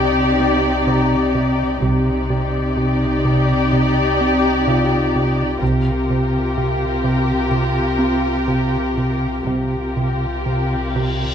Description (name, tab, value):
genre	cinematic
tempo	63 BPM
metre	4/4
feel	straight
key	C minor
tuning	A4 = 438 Hz
part	muted studio violin section	melody	0.0-11.3 s	Bb4 to D5	-25 LUFS	left 4 dB	none
part	muted symphonic violin section	second line	0.0-11.3 s	G4	-23 LUFS	left 3 dB	none
part	muted studio viola section	accompaniment	0.0-11.3 s	Eb4 to F4	-27 LUFS	right 1 dB	none
part	rubbery square bass	riff	0.0-11.3 s	C3 to C4	-21 LUFS	right 2 dB	none
part	muted studio cello section	bass	0.0-11.3 s	C3	-22 LUFS	equal	none
part	sub bass with octave	drone	0.0-11.3 s	C2	-26 LUFS	equal	none
part	felt-muted upright piano	texture	0.9-11.3 s	F4 to Bb5	-30 LUFS	left 3 dB	none
part	muted studio double bass section	bass	1.8-10.4 s	C2	-28 LUFS	right 3 dB	none
part	cymbal swell	sound effects	10.7-11.3 s	none	-32 LUFS	left 2 dB	none
room	wet recital hall reverb, RT60 1.4 s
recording	dark, warm production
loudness	-16 LUFS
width	side -8 dB against mid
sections	0.0-11.3 A section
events	cymbal swell 10.7-11.3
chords	0.0 Cmadd9; 5.6 Gm7/C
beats	0.88 | 1.82 2.77 3.72 4.67 | 5.62 6.56 7.51 8.47 | 9.46 10.45